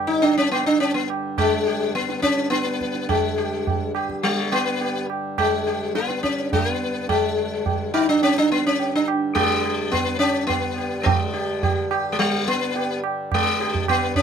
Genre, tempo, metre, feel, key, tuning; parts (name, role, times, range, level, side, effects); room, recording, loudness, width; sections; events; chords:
indian classical, Hindustani; 106 BPM; 7/4; straight; A4 = 439 Hz
pedal harmonium; drone; 0.0-14.2 s; G2 to D3; -32 LUFS; left 1 dB
sitar; melody; 0.1-14.2 s; G3 to G4; -21 LUFS; left 1 dB
tabla; percussion; 0.2-14.2 s; -25 LUFS; right 5 dB
light reverb; minimal, uncompressed stereo recording; -19 LUFS; side -7 dB against mid
0.0-11.1 A section; 11.1-14.2 B section